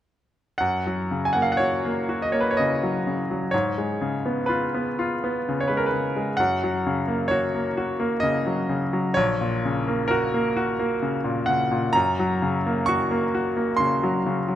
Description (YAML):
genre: classical, romantic nocturne for solo piano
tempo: 63 BPM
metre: 3/4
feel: uneven beats, rubato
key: F# major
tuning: A4 = 440 Hz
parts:
  - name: bright grand piano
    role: solo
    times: 0.6-14.6 s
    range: A#1 to Db6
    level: -21 LUFS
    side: equal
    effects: none
room: moderate concert hall reverb, RT60 1.9 s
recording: close, detailed microphones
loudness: -21 LUFS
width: side -11 dB against mid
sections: 0.6-14.6 A section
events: none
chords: 0.6 F#; 3.5 C#7/G#; 6.4 F#; 9.2 F#/A#; 11.9 Gb